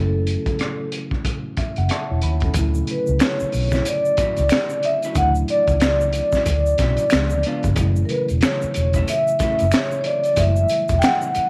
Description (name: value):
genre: R&B, neo-soul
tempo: 92 BPM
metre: 4/4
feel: swing 60% on 16ths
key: D major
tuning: A4 = 440 Hz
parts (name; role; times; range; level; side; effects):
- vibraphone with soft mallets; melody; 0.0-11.5 s; A4 to G5; -23 LUFS; equal; none
- mellow tine electric piano; accompaniment; 0.0-11.5 s; C#3 to B5; -30 LUFS; equal; none
- vintage muted fingered electric bass; bass; 0.0-11.4 s; E1 to Eb2; -23 LUFS; equal; tube saturation
- crunchy breakbeat drum kit; drums; 0.3-11.5 s; finger snaps, hi-hat, kick drum, rim click, snare drum; -26 LUFS; equal; none
- tube shaker and finger snaps; percussion; 2.6-11.5 s; none; -36 LUFS; equal; none
- electric guitar through a small old amp; second line; 3.7-9.6 s; F#3 to E#4; -32 LUFS; equal; none
room: light reverb, studio ambience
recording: none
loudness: -20 LUFS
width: mono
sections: 0.0-2.5 A section; 2.5-11.5 B section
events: tine electric piano fill 1.2-2.5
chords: 0.0 F#m7; 2.5 Dmaj9; 7.1 C#7b9; 7.8 F#m7